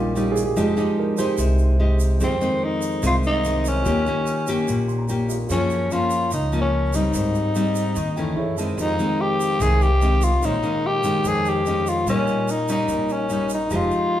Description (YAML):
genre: bossa nova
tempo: 146 BPM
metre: 4/4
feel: straight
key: F minor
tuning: A4 = 440 Hz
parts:
  - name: dark baby grand piano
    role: accompaniment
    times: 0.0-14.2 s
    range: F3 to C6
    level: -28 LUFS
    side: right 4 dB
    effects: none
  - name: nylon-string guitar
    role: accompaniment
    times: 0.0-14.2 s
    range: F2 to G4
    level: -23 LUFS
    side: left 1 dB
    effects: none
  - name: upright bass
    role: bass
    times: 0.0-13.9 s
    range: F1 to Ab2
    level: -24 LUFS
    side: equal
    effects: none
  - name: egg shaker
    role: percussion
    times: 0.2-14.1 s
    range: none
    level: -37 LUFS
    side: right 5 dB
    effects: none
  - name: growling tenor saxophone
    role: melody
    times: 2.2-14.2 s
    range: C4 to Ab4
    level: -22 LUFS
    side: left 2 dB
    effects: none
room: wet large studio reverb, RT60 1.1 s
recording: heard from further back in the room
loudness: -19 LUFS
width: side -12 dB against mid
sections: 0.0-2.2 A section; 2.2-14.2 B section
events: grand piano solo 0.0-2.2; grand piano fill 4.7-5.5, 8.0-8.8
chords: 0.0 Eb7/Bb; 0.6 Fm9; 2.2 Fm7; 3.9 Eb7; 5.5 Gbmaj7; 7.1 Abmaj7; 8.4 Gbm7; 8.8 Fm7; 10.4 Bbm11; 12.1 Eb7/Bb